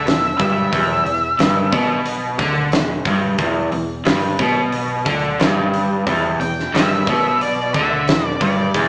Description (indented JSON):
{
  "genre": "blues rock power trio and southern rock",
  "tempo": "90 BPM",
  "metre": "4/4",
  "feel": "straight",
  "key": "E minor",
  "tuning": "A4 = 438 Hz",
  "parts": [
    { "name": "octave-fuzz lead guitar", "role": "melody", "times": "0.0-2.3, 6.4-8.9 s", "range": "D5 to G5", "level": "-20 LUFS", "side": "equal", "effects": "distortion" },
    { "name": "crunchy overdriven guitar", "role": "riff", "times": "0.0-8.9 s", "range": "E2 to D3", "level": "-18 LUFS", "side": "equal", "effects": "spring reverb" },
    { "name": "vintage muted fingered electric bass", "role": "bass", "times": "0.0-8.9 s", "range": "E1 to D2", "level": "-31 LUFS", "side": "equal", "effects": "none" },
    { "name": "big rock drum kit", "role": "drums", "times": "0.1-8.9 s", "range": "hi-hat, kick drum, snare drum", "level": "-20 LUFS", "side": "equal", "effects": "none" }
  ],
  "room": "moderate large studio reverb, RT60 1.4 s",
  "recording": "band playing live in one room, small speaker sound",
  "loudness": "-15 LUFS",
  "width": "side -26 dB against mid",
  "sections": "0.0-8.9 A section",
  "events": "none",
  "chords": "0.0 Em"
}